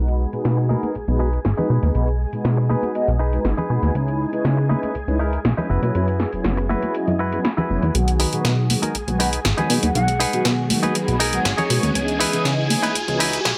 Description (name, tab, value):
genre	filtered disco house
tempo	120 BPM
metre	4/4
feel	straight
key	B major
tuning	A4 = 440 Hz
part	mellow synth brass	accompaniment	0.0-13.3 s	D#3 to D#5	-27 LUFS	equal	chorus, phaser, low-pass filter
part	string machine, full ensemble	sustained chords	0.0-13.6 s	G#4 to G#5	-33 LUFS	equal	ensemble chorus, low-pass filter
part	plucky analog bass	bass	0.0-13.5 s	F#1 to C#3	-23 LUFS	equal	low-pass filter
part	punchy analog drum machine	drums	0.1-13.6 s	hi-hat, snare drum	-26 LUFS	equal	high-pass filter on hats, low-pass filter on hats, high-pass filter on snare, low-pass filter on snare
part	tambourine and congas	percussion	0.1-13.6 s	none	-29 LUFS	equal	low-pass filter on perc
part	direct-recorded clean electric guitar	riff	0.4-13.4 s	D#4 to C#5	-28 LUFS	equal	low-pass filter
part	riser	sound effects	10.2-13.6 s	none	-33 LUFS	equal	none
part	breathy bright jazz flute	melody	9.6-10.4 s	F#5 to G#5	-29 LUFS	equal	vintage 12-bit sampler grit, low-pass filter, dub echo
room	light reverb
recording	high-pass filter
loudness	-20 LUFS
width	mono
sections	0.0-8.0 A section; 8.0-13.6 B section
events	filter sweep 0.0-8.0, 8.0-13.6; build-up 8.0-13.6; riser 10.2-13.6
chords	0.0 B6; 4.0 C#m9; 5.7 F#7sus4; 8.0 B6; 12.0 C#m9